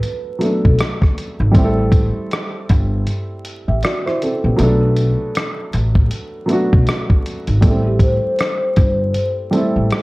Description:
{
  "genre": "lo-fi hip hop",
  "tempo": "79 BPM",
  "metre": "4/4",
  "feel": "swing 60% on 16ths",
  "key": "A dorian",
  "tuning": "A4 = 439 Hz",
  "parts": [
    { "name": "vibraphone with soft mallets", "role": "melody", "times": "0.0-0.8, 7.9-9.3 s", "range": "G4 to C5", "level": "-22 LUFS", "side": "left 1 dB", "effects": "low-pass filter, analog delay" },
    { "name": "dark upright piano", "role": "accompaniment", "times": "0.0-10.0 s", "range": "F#3 to E5", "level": "-20 LUFS", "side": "right 1 dB", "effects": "cassette tape, low-pass filter" },
    { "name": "dusty soul sampler-style drum kit", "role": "drums", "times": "0.0-10.0 s", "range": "hi-hat, kick drum, rim click", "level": "-16 LUFS", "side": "equal", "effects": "none" },
    { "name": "upright bass", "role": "bass", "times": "0.7-9.9 s", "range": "G1 to B1", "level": "-17 LUFS", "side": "equal", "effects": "none" }
  ],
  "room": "light reverb",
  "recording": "worn, warbling old tape, cassette tape, vinyl crackle, warbly pitch drift",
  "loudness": "-14 LUFS",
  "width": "side -22 dB against mid",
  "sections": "0.0-10.0 A section",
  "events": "none",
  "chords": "0.0 Bm7; 1.5 Am7; 4.6 Bm7; 7.6 Am7"
}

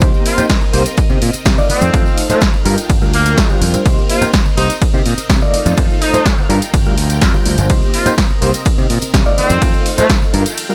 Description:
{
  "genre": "filtered disco house",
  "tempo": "125 BPM",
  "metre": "4/4",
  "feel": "straight",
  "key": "C dorian",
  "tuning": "A4 = 440 Hz",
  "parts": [
    { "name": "overdriven reed electric piano", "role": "accompaniment", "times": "0.0-10.7 s", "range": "G3 to D5", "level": "-20 LUFS", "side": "equal", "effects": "medium tremolo, phaser, sidechain pumping" },
    { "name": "string machine, full ensemble", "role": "sustained chords", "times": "0.0-10.7 s", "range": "C4 to G5", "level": "-28 LUFS", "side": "equal", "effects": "phaser, ensemble chorus, sidechain pumping" },
    { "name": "growling fingered electric bass", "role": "bass", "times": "0.0-10.4 s", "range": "G1 to C3", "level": "-19 LUFS", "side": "equal", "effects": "overdrive, tube saturation, sidechain pumping" },
    { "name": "electronic kick drum", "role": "drums", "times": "0.0-10.2 s", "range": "none", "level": "-16 LUFS", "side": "equal", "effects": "overdrive" },
    { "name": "punchy analog drum machine", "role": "drums", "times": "0.0-10.7 s", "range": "hi-hat, ride cymbal, snare drum", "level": "-22 LUFS", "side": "equal", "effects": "overdrive" },
    { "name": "tambourine and congas", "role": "percussion", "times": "0.0-10.7 s", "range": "none", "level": "-27 LUFS", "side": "equal", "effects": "sidechain pumping on perc" },
    { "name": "clear horn section", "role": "melody", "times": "0.3-10.1 s", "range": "A3 to F4", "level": "-23 LUFS", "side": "equal", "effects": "sidechain pumping, dub echo" }
  ],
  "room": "digital ambience",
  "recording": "none",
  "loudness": "-13 LUFS",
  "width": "mono",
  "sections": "0.0-10.7 A section",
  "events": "break 10.6",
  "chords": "0.0 Cm7; 1.7 F7; 2.7 Gm7; 3.9 Cm7; 5.5 F7; 6.5 Gm7; 7.7 Cm7; 9.4 F7"
}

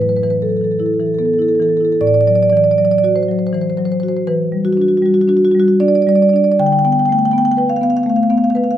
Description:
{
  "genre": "classical, contemporary piece for solo marimba",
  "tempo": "71-83 BPM",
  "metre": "3/4",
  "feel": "rubato",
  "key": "A dorian",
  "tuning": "A4 = 440 Hz",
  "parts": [
    { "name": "marimba with medium mallets", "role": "solo", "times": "0.0-8.8 s", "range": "A2 to G5", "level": "-12 LUFS", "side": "equal", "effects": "none" }
  ],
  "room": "light reverb",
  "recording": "close, detailed microphones",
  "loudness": "-12 LUFS",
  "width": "side -11 dB against mid",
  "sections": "0.0-2.0 A section; 2.0-8.8 B section",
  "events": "none",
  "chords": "0.0 Asus2; 2.0 Am6; 4.3 Em9; 6.6 Dm6"
}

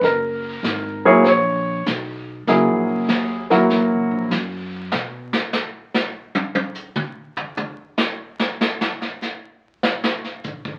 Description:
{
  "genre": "jazz piano trio",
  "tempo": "98 BPM",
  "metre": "4/4",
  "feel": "swing 67% on 8ths",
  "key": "F# mixolydian",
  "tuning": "A4 = 440 Hz",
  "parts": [
    { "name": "warm baby grand piano", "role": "melody", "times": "0.0-4.3 s", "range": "F#3 to C#5", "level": "-19 LUFS", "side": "equal", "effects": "none" },
    { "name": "upright bass", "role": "bass", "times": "0.0-5.3 s", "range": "F#1 to B2", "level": "-31 LUFS", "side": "equal", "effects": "none" },
    { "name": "vintage brush drum kit", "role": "drums", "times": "0.0-10.8 s", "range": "brushed snare drum, hi-hat, kick drum, snare drum, toms", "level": "-25 LUFS", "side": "equal", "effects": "none" }
  ],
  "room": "wet studio ambience, RT60 0.5 s",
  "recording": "very old 78 rpm record, vinyl crackle",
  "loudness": "-21 LUFS",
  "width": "mono",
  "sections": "0.0-10.8 A section",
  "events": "grand piano solo 0.0-10.8; drum solo 4.9-10.8",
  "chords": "0.0 F#9; 4.9 N.C."
}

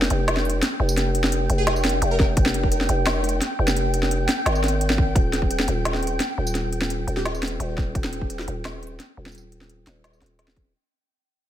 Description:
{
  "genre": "half-time drum and bass",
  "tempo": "172 BPM",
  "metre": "4/4",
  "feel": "half-time",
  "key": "unclear",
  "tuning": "A4 = 435 Hz",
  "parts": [
    { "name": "growling 808-style bass", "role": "bass", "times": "0.0-10.7 s", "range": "Eb1 to Ab1", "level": "-24 LUFS", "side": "equal", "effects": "none" },
    { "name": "organic electronic drum kit", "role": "drums", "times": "0.0-10.6 s", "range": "hi-hat, snare drum, tambourine", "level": "-25 LUFS", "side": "equal", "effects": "overdrive" },
    { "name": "flickering grainy texture", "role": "texture", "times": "0.0-10.7 s", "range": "G5", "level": "-30 LUFS", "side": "right 1 dB", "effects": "built-in reverb" },
    { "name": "plucky unison lead", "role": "melody", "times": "1.6-2.2, 7.2-7.3 s", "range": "G4 to Bb4", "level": "-31 LUFS", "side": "left 1 dB", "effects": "lush chorus, tape echo" },
    { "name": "electronic kick drum", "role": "drums", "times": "2.2-2.7, 5.0-5.5, 7.8-8.3, 10.6 s", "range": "none", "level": "-21 LUFS", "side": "equal", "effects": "overdrive" }
  ],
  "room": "little or no reverb",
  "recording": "none",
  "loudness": "-20 LUFS",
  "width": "side -12 dB against mid",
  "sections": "0.0-10.7 A section",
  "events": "drop 0.0-10.7; fade-out 5.2-10.7",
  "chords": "0.0 Fm; 5.2 Eb"
}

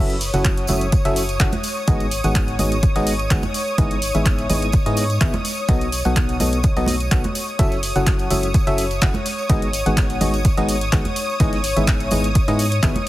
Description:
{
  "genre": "piano house",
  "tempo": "126 BPM",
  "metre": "4/4",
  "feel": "swing 54% on 16ths",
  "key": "unclear",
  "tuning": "A4 = 440 Hz",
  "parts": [
    { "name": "analog string pad", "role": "sustained chords", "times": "0.0-13.1 s", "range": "C#5 to D#6", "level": "-26 LUFS", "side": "left 1 dB", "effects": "ensemble chorus, sidechain pumping" },
    { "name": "barking FM electric piano", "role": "riff", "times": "0.0-13.0 s", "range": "G#2 to F#5", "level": "-23 LUFS", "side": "left 1 dB", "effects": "chorus, tremolo, sidechain pumping, digital delay" },
    { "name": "organ-like FM bass", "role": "bass", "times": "0.0-12.9 s", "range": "F#1 to G#2", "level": "-23 LUFS", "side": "equal", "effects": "sidechain pumping" },
    { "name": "punchy analog drum machine", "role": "drums", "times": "0.1-13.0 s", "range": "handclaps, hi-hat", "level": "-26 LUFS", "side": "equal", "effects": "overdrive" },
    { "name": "tambourine and congas", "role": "percussion", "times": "0.1-13.0 s", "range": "none", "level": "-30 LUFS", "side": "right 3 dB", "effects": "none" },
    { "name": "electronic kick drum", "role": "drums", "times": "0.4-12.9 s", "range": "none", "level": "-18 LUFS", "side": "equal", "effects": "overdrive" },
    { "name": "breakbeat sampler-style drum kit", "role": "drums", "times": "7.6-12.9 s", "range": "hi-hat, snare drum", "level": "-36 LUFS", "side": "equal", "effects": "none" }
  ],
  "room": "little or no reverb",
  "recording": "heavily compressed radio sound",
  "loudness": "-17 LUFS",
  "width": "side -16 dB against mid",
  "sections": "0.0-13.1 A section",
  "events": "none",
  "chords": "0.0 F#m7; 1.6 G#m7; 3.8 Emaj7/G#; 5.4 B7; 7.6 F#m7; 9.3 G#m7; 11.4 Emaj7/G#"
}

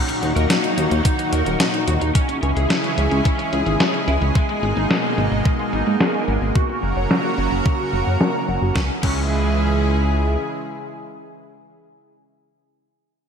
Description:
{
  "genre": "synthwave",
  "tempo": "109 BPM",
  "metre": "4/4",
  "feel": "straight",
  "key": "C# dorian",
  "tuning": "A4 = 440 Hz",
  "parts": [
    { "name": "lush unison pad", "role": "sustained chords", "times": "0.0-11.7 s", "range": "A#2 to A#4", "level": "-22 LUFS", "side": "equal", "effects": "chorus, sidechain pumping" },
    { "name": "raw garage guitar", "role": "riff", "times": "0.0-9.2 s", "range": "G#3 to F#5", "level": "-26 LUFS", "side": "equal", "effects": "overdrive, analog chorus, low-pass filter, digital delay" },
    { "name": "clean 12-bit digital drum machine", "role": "drums", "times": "0.1-9.2 s", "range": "crash cymbal, hi-hat, snare drum", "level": "-23 LUFS", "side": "left 1 dB", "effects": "low-pass filter on hats, small room ambience, low-pass filter on snare, low-pass filter on cymbals, gated reverb" },
    { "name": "chorused synth bass", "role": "bass", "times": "0.2-10.4 s", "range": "D#1 to G#2", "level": "-20 LUFS", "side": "equal", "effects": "none" },
    { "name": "electronic kick drum", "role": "drums", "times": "1.1-9.2 s", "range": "none", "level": "-19 LUFS", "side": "equal", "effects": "small room ambience" }
  ],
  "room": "moderate lush hall reverb, RT60 2.5 s",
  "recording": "bright 1980s-style digital production",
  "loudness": "-17 LUFS",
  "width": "side -7 dB against mid",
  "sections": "0.0-8.8 A section; 8.8-11.0 B section",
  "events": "filter sweep on drum 0.0-8.8; filter sweep on analog synth bass 0.0-8.8; filter sweep on overdriven electric guitar 0.0-8.8",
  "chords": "0.0 D#m; 2.2 C#m; 4.4 G#madd9; 6.6 F#; 8.8 C#m"
}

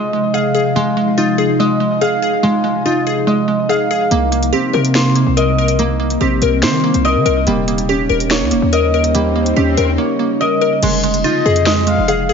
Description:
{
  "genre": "hip hop, drill",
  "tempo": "143 BPM",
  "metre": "4/4",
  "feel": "half-time",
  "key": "F minor",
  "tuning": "A4 = 443 Hz",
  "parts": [
    { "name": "glassy wavetable pluck", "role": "accompaniment", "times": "0.0-12.3 s", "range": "Ab3 to Bb4", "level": "-17 LUFS", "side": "equal", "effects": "chorus" },
    { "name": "ethereal airy pad", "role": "sustained chords", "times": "0.0-12.3 s", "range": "C3 to Eb4", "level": "-21 LUFS", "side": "left 1 dB", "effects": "ensemble chorus, built-in reverb, phaser" },
    { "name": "concert harp", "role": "arpeggios", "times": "0.0-12.3 s", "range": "G3 to F5", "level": "-17 LUFS", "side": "right 1 dB", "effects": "ping-pong delay" },
    { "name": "hard-hitting 808-style bass", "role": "bass", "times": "4.1-12.3 s", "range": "Eb1 to Eb3", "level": "-18 LUFS", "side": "equal", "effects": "none" },
    { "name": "drill drum kit", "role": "drums", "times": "4.1-12.2 s", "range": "crash cymbal, finger snaps, hi-hat, snare drum", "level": "-21 LUFS", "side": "left 1 dB", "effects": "none" },
    { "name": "swell", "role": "sound effects", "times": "9.0-10.0 s", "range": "none", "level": "-27 LUFS", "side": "equal", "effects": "none" },
    { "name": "breathy flute-like synth lead", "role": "second line", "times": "11.2-12.1 s", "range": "Eb5 to F5", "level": "-19 LUFS", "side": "left 9 dB", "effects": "chorus, ping-pong delay" }
  ],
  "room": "moderate recital hall reverb, RT60 1.5 s",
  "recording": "nothing above 7.5 kHz",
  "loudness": "-12 LUFS",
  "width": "side -6 dB against mid",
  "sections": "0.0-10.8 A section; 10.8-12.3 B section",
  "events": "swell 9.0-10.8",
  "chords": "0.0 Fm7; 4.1 Cm7; 7.5 Eb7; 10.8 Fm7"
}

